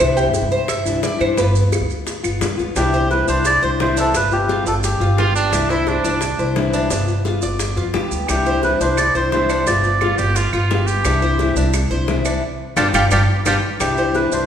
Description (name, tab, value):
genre	latin, Cuban son and guajira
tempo	174 BPM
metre	4/4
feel	straight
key	C major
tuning	A4 = 441 Hz
part	nylon-string guitar	accompaniment	0.0-14.5 s	C3 to F4	-23 LUFS	left 4 dB	none
part	Cuban tres	arpeggios	0.0-14.5 s	D4 to E5	-23 LUFS	equal	none
part	upright bass	bass	0.0-14.5 s	G1 to G2	-21 LUFS	equal	none
part	claves	percussion	0.0-2.4, 8.3-14.0 s	none	-30 LUFS	right 5 dB	none
part	maracas	percussion	0.0-14.5 s	none	-30 LUFS	right 6 dB	none
part	bongos	percussion	0.3-14.3 s	none	-27 LUFS	left 4 dB	none
part	melodica	melody	2.8-5.3, 8.3-10.2, 12.8-14.5 s	G4 to G5	-19 LUFS	right 1 dB	none
part	clear trumpet	second line	5.2-6.6, 10.0-13.5 s	D4 to G4	-23 LUFS	right 3 dB	none
room	wet recital hall reverb, RT60 1.6 s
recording	recorded in a church or concert hall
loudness	-15 LUFS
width	side -8 dB against mid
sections	0.0-2.8 A section; 2.8-13.8 B section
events	Cuban tres solo 0.0-2.8; band accent 12.4-13.8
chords	0.0 Cadd9; 1.4 G7; 2.8 Cadd9; 4.1 G7; 5.5 Cadd9; 6.9 G7; 8.3 Cadd9; 9.7 G7; 11.0 Cadd9; 12.4 G7; 13.8 Cadd9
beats	| 0.00 0.34 0.69 1.03 | 1.38 1.72 2.07 2.42 | 2.76 3.11 3.45 3.80 | 4.14 4.49 4.83 5.18 | 5.52 5.87 6.21 6.56 | 6.91 7.25 7.59 7.94 | 8.29 8.63 8.97 9.32 | 9.66 10.01 10.36 10.70 | 11.04 11.39 11.73 12.08 | 12.43 12.77 13.12 13.46 | 13.80 14.15